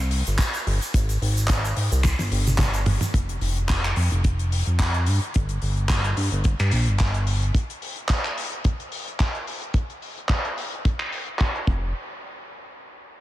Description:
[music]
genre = nu-disco, nu disco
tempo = 109 BPM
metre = 4/4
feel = swing 54% on 16ths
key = unclear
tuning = A4 = 440 Hz
[part]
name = chorused synth bass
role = bass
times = 0.0-7.5, 11.7-11.9 s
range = F1 to Ab2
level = -22 LUFS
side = equal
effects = none
[part]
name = damped 70s drum kit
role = drums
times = 0.1-11.7 s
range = finger snaps, handclaps, hi-hat, shaker, toms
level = -27 LUFS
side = equal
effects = low-pass filter on hats, low-pass filter on toms, low-pass filter on snare, low-pass filter on perc, low-pass filter on room
[part]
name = kick drum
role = drums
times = 0.4-11.8 s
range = none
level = -21 LUFS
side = equal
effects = none
[sound]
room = light reverb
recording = none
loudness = -21 LUFS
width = side -15 dB against mid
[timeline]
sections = 0.0-3.1 A section; 3.1-11.9 B section; 11.9-13.2 C section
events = drop 0.0-3.1; drum fill 2.0-3.1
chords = none

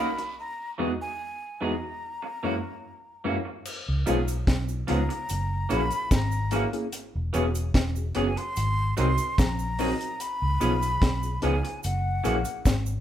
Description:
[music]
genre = lovers rock reggae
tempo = 73 BPM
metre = 4/4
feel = straight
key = unclear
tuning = A4 = 440 Hz
[part]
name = breathy hollow jazz flute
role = melody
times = 0.0-12.6 s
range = F#5 to B#5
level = -32 LUFS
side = left 1 dB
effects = none
[part]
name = tine electric piano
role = accompaniment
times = 0.0-12.4 s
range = E2 to A#4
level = -30 LUFS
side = left 2 dB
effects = overdrive, fast stereo tremolo
[part]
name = electric guitar through a small old amp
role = stabs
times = 0.0-12.3 s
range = E3 to G#4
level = -31 LUFS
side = right 3 dB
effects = none
[part]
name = deep reggae drum kit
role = drums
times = 0.2-12.9 s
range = crash cymbal, hi-hat, kick drum, snare drum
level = -26 LUFS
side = equal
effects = none
[part]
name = cabasa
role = percussion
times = 3.7-13.0 s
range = none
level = -44 LUFS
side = right 7 dB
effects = dub echo
[part]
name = vintage muted fingered electric bass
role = bass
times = 3.9-13.0 s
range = E1 to C#2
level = -27 LUFS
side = equal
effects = none
[sound]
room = moderate large studio reverb, RT60 1.1 s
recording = band playing live in one room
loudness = -24 LUFS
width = side -11 dB against mid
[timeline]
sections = 0.0-3.7 A section; 3.7-13.0 B section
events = break 0.4-3.7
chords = 0.4 Emaj7; 2.0 F#7; 3.7 C#7; 5.3 F#7; 6.9 E6; 8.6 G#7; 10.2 C#7; 11.8 F#7

